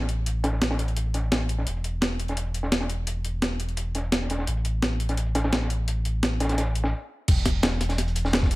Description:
liquid drum and bass; 171 BPM; 4/4; straight; A4 = 440 Hz
sub bass with octave; bass; 0.0-8.6 s; E1 to A1; -26 LUFS; equal
crunchy breakbeat drum kit; drums; 0.0-8.6 s; hi-hat, snare drum; -31 LUFS; equal; high-pass filter on hats, low-pass filter on hats, high-pass filter on snare, low-pass filter on snare, high-pass filter on room, low-pass filter on room
breakbeat sampler-style drum kit; drums; 0.1-8.6 s; crash cymbal, hi-hat, snare drum; -27 LUFS; equal
electronic kick drum; drums; 7.3-8.5 s; -22 LUFS; equal
little or no reverb; -23 LUFS; side -20 dB against mid
0.0-7.3 A section; 7.3-8.6 B section
stop 6.9-7.3; drop 7.3-8.6

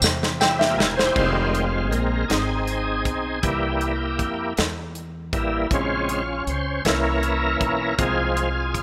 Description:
slow gospel; 53 BPM (dotted quarters); 6/8; straight; F harmonic minor; A4 = 440 Hz
warm concert grand piano; accompaniment; 0.0-1.3 s; C3 to G5; -27 LUFS; equal
upright bass; bass; 0.0-8.8 s; E1 to F2; -30 LUFS; equal
modern studio drum kit; drums; 0.0-8.8 s; crash cymbal, hi-hat, kick drum, snare drum; -27 LUFS; equal
tambourine; percussion; 0.0-0.8 s; -25 LUFS; equal
bright tonewheel organ; sustained chords; 0.4-8.8 s; Db3 to Ab5; -26 LUFS; equal; slow rotary speaker, overdrive, chorus vibrato
moderate lush hall reverb, RT60 2.0 s; rough home demo mix; -22 LUFS; mono
0.0-1.2 A section; 1.2-8.8 B section
drum fill 0.0-1.2; tonewheel organ fill 0.0-1.2; tonewheel organ solo 1.2-8.8
0.0 C; 1.2 Fm9; 3.4 C7; 5.7 Bbm9; 6.8 C7b9; 8.0 Fm/C

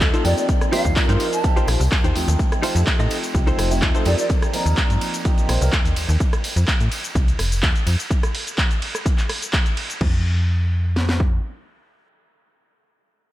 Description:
filtered disco house; 126 BPM; 4/4; straight; F mixolydian; A4 = 439 Hz
dark baby grand piano; accompaniment; 0.0-5.7 s; F3 to C5; -26 LUFS; right 1 dB; phaser, sidechain pumping
slap-like FM bass; bass; 0.0-11.4 s; F1 to A2; -20 LUFS; equal; sidechain pumping
house drum kit; drums; 0.0-11.3 s; kick drum, snare drum; -20 LUFS; equal; overdrive
punchy analog drum machine; drums; 0.0-10.1 s; cabasa, crash cymbal, handclaps, hi-hat, ride cymbal, rim click; -25 LUFS; equal; sidechain pumping on hats, sidechain pumping on perc, sidechain pumping on cymbals
tambourine; percussion; 0.0-8.1 s; -38 LUFS; left 2 dB
direct-recorded clean electric guitar; riff; 0.1-4.2 s; Eb4 to Eb5; -28 LUFS; left 2 dB; analog chorus, sidechain pumping
breathy mellow jazz flute; melody; 0.2-4.3 s; D5 to A5; -29 LUFS; right 1 dB; sidechain pumping, tape echo
light reverb, digital ambience; -17 LUFS; side -15 dB against mid
0.0-10.0 A section; 10.0-13.3 B section
drop 0.0-10.0
0.5 Eb69; 2.4 F7; 4.3 Eb69; 6.2 F5; 8.1 N.C.

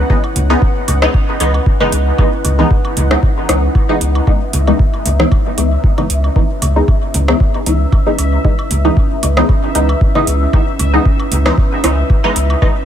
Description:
dub techno; 115 BPM; 4/4; swing 54% on 16ths; C# minor; A4 = 439 Hz
deep dark ambient pad; sustained chords; 0.0-12.8 s; C#4 to E5; -23 LUFS; right 1 dB; chorus, built-in reverb, sidechain pumping
warm sub bass; bass; 0.0-12.6 s; C#2; -14 LUFS; equal; sidechain pumping
bubbling stepped-filter texture; texture; 0.0-12.8 s; E5 to F#5; -26 LUFS; left 4 dB; chorus, built-in reverb, sidechain pumping
filtered dub chord stab; stabs; 0.1-12.7 s; E3 to D#4; -17 LUFS; equal; chorus, phaser, sidechain pumping, dub echo
electronic kick drum; drums; 0.1-12.7 s; -13 LUFS; equal; overdrive
woodblock and congas; percussion; 0.2-12.7 s; -26 LUFS; right 1 dB; overdrive, sidechain pumping on perc, dub echo
booming analog drum machine; drums; 0.4-12.5 s; hi-hat, rim click; -20 LUFS; right 1 dB; overdrive, dub echo
digital ambience; -11 LUFS; side -10 dB against mid
0.0-12.8 A section
0.0 C#m9

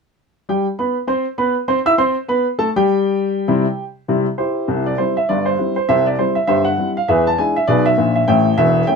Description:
ragtime piano; 100 BPM; 2/4; swing 59% on 16ths; C major; A4 = 442 Hz
warm upright piano; solo; 0.5-9.0 s; E1 to E6; -15 LUFS; equal
moderate studio reverb, RT60 0.5 s; minimal, uncompressed stereo recording; -15 LUFS; side -5 dB against mid
0.0-4.7 A section; 4.7-9.0 B section
0.0 C; 7.1 E7; 8.3 A

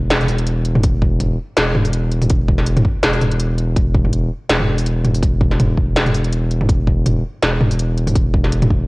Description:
half-time drum and bass; 164 BPM; 4/4; swing 55% on 16ths, half-time; A4 = 440 Hz
saturated sub bass; bass; 0.0-8.9 s; E1; -18 LUFS; equal
industrial drum kit; drums; 0.1-8.7 s; hi-hat, snare drum, toms; -18 LUFS; equal; cassette tape
electronic kick drum; drums; 0.8-8.8 s; -17 LUFS; equal; cassette tape
light reverb; home recording on cassette; -14 LUFS; side -24 dB against mid
0.0-8.9 A section

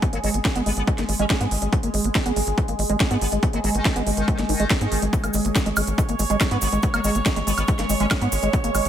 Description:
psychedelic trance; 141 BPM; 4/4; straight; G# minor; A4 = 440 Hz
evolving wavetable pad; sustained chords; 0.0-8.9 s; G#3 to C#5; -27 LUFS; right 1 dB; phaser, built-in reverb, sidechain pumping
liquid acid bass; riff; 0.0-8.9 s; G#3 to D#4; -26 LUFS; right 1 dB; chorus, auto-pan, sidechain pumping, dub echo
electronic kick drum; drums; 0.0-8.6 s; -22 LUFS; equal
techno drum kit; drums; 0.0-8.9 s; hi-hat, snare drum, woodblock; -26 LUFS; right 1 dB
metallic wobble bass; second line; 0.1-8.2 s; D#3 to C#4; -35 LUFS; left 3 dB; lush chorus, sidechain pumping, high-pass filter, dub echo
tight sequencer bass; bass; 0.1-8.9 s; G#1 to G#2; -25 LUFS; equal
cabasa; percussion; 5.1-8.9 s; -32 LUFS; right 3 dB
light reverb; -19 LUFS; side -10 dB against mid
0.0-8.9 A section
filter sweep on acid bass 0.0-8.9
0.0 G#5

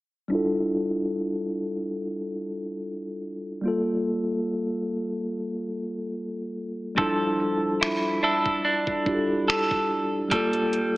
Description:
contemporary R&B; 72 BPM; 4/4; swing 54% on 16ths; F major; A4 = 440 Hz
mellow tine electric piano; accompaniment; 0.3-11.0 s; G3 to A4; -26 LUFS; equal; medium stereo tremolo, low-pass filter
direct-recorded clean electric guitar; arpeggios; 7.0-11.0 s; F3 to A4; -25 LUFS; right 1 dB; spring reverb, low-pass filter, digital delay
smooth R&B drum kit; drums; 7.0-10.9 s; finger snaps, hi-hat, kick drum; -28 LUFS; equal
moderate lush hall reverb, RT60 1.8 s; AM radio sound; -24 LUFS; side -19 dB against mid
0.3-11.0 A section
filter sweep 0.3-11.0
0.3 Fmaj13; 3.6 Gm9; 7.0 Fmaj13; 10.3 Gm9

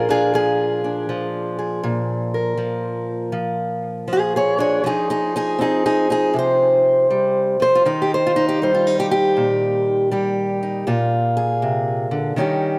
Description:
acoustic country blues, solo or duo; 80 BPM; 4/4; swing 66% on 8ths; Bb mixolydian; A4 = 440 Hz
fingerpicked acoustic archtop guitar; solo; 0.0-12.8 s; Bb2 to Db5; -20 LUFS; equal; analog delay
wet plate reverb, RT60 3.2 s; dreamy mix soaked in reverb; -20 LUFS; mono
0.0-12.8 A section
0.0 Bb7; 4.8 F5; 7.9 Eb; 10.9 Bb7

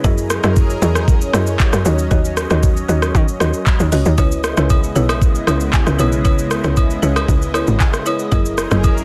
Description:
amapiano; 116 BPM; 4/4; straight; C# dorian; A4 = 441 Hz
lush unison pad; sustained chords; 0.0-9.0 s; C#3 to D#5; -27 LUFS; equal; chorus, phaser
buzzing marimba with medium mallets; stabs; 0.0-9.0 s; E4 to D#5; -26 LUFS; equal; digital delay
tight log drum bass; bass; 0.0-9.0 s; F#1 to D#3; -20 LUFS; equal
afro-pop drum kit; drums; 0.0-9.0 s; handclaps, hi-hat, kick drum, rim click, shaker; -19 LUFS; equal
agogo bells and woodblock; percussion; 4.2-9.0 s; -29 LUFS; equal
digital ambience; dense, heavily limited modern master; -16 LUFS; mono
0.0-9.0 A section
0.0 F#13; 1.9 D#m7; 4.2 C#m7; 8.3 F#13

